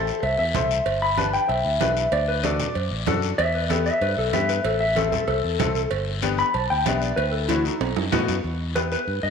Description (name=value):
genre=latin, cumbia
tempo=190 BPM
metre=4/4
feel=straight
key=unclear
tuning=A4 = 441 Hz
part: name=mellow electric guitar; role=melody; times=0.0-9.3 s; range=D#4 to B5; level=-23 LUFS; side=left 1 dB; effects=spring reverb
part: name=bright upright piano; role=accompaniment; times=0.0-9.0 s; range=A3 to C5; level=-29 LUFS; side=left 11 dB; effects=none
part: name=fingered electric bass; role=bass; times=0.0-9.3 s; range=G1 to A2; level=-27 LUFS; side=equal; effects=none
part: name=guiro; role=percussion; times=0.1-9.3 s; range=none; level=-34 LUFS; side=left 12 dB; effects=none
part: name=congas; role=percussion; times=0.2-9.2 s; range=none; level=-30 LUFS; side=right 8 dB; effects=none
part: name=cowbell and timbales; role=percussion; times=0.2-8.4 s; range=none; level=-31 LUFS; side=right 12 dB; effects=none
room=moderate echo chamber reverb, RT60 1.9 s, small room ambience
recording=1960s-style stereo with parts hard left and right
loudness=-20 LUFS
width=side -6 dB against mid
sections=0.0-8.4 A section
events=clean electric guitar solo 0.0-8.4; drum fill 7.8-8.4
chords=0.0 Am; 0.9 G; 2.1 D; 3.4 Em; 4.7 Am; 5.9 G; 7.2 D; 7.8 B7; 8.4 Em